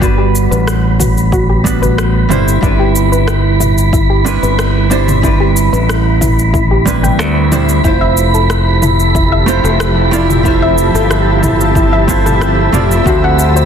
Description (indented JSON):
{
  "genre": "sunset chillout",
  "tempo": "92 BPM",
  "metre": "4/4",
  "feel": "straight",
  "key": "unclear",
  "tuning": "A4 = 440 Hz",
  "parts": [
    { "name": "hollow-body jazz guitar", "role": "accompaniment", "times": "0.0-13.7 s", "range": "G3 to D5", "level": "-16 LUFS", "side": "right 2 dB", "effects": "auto-pan, low-pass filter, ping-pong delay" },
    { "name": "soft round pluck", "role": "arpeggios", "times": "0.0-13.7 s", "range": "E4 to G5", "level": "-19 LUFS", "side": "left 3 dB", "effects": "wide subtle chorus, ping-pong delay" },
    { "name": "modern bright fingered electric bass", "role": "bass", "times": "0.0-13.7 s", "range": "F1 to D2", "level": "-13 LUFS", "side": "equal", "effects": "none" },
    { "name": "deep house drum kit", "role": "drums", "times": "0.0-13.7 s", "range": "cabasa, rim click, toms", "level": "-20 LUFS", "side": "equal", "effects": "soft clipping on snare" },
    { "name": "electronic kick drum", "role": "drums", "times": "0.0-13.2 s", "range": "none", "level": "-16 LUFS", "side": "equal", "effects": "none" },
    { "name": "wind-like tuned noise texture", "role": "texture", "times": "0.0-13.7 s", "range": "B5", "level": "-20 LUFS", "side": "right 2 dB", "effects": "built-in reverb" },
    { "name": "shimmering ambient pad", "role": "sustained chords", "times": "8.7-13.7 s", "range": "D3 to E5", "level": "-17 LUFS", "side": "equal", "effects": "chorus, built-in reverb, vintage 12-bit sampler grit" }
  ],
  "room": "light reverb, digital ambience",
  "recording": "dense, heavily limited modern master",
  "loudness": "-9 LUFS",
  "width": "side -8 dB against mid",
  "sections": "0.0-13.7 A section",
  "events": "filter sweep on synth pluck 0.0-13.7",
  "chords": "0.0 Gmaj7; 2.3 Cmaj9/G; 7.8 Fmaj7; 13.1 D7"
}